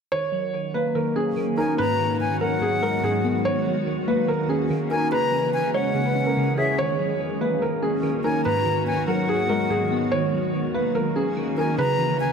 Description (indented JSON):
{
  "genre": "hip hop",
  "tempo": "144 BPM",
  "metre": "4/4",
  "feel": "half-time",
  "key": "Eb phrygian",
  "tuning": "A4 = 438 Hz",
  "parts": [
    { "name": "felt-muted upright piano", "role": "melody", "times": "0.1-12.3 s", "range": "Ab4 to Db5", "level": "-25 LUFS", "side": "right 2 dB", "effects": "low-pass filter, tape echo" },
    { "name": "glassy digital keys", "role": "accompaniment", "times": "0.1-12.3 s", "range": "Ab2 to Db5", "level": "-26 LUFS", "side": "equal", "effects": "chorus, low-pass filter" },
    { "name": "granular cloud pad", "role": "sustained chords", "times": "0.9-12.3 s", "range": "Eb3 to Ab4", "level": "-28 LUFS", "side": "equal", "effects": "built-in reverb" },
    { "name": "breathy silver concert flute", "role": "second line", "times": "1.6-12.3 s", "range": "Fb5 to Bb5", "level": "-27 LUFS", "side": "left 4 dB", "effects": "tape echo" }
  ],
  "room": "moderate lush hall reverb, RT60 2.5 s",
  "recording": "none",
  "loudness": "-21 LUFS",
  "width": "side -6 dB against mid",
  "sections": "0.1-12.3 A section",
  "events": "none",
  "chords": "0.1 Ebm7; 1.8 Abm7; 3.5 Ebm7; 5.1 Dbm; 6.8 Ebm7; 8.5 Abm7; 10.1 Ebm7; 11.8 Dbm",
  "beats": "| 0.12 0.54 0.95 1.37 | 1.78 2.20 2.62 3.04 | 3.45 3.87 4.29 4.70 | 5.12 5.54 5.95 6.37 | 6.79 7.20 7.62 8.04 | 8.45 8.87 9.29 9.70 | 10.12 10.54 10.95 11.37 | 11.79 12.20"
}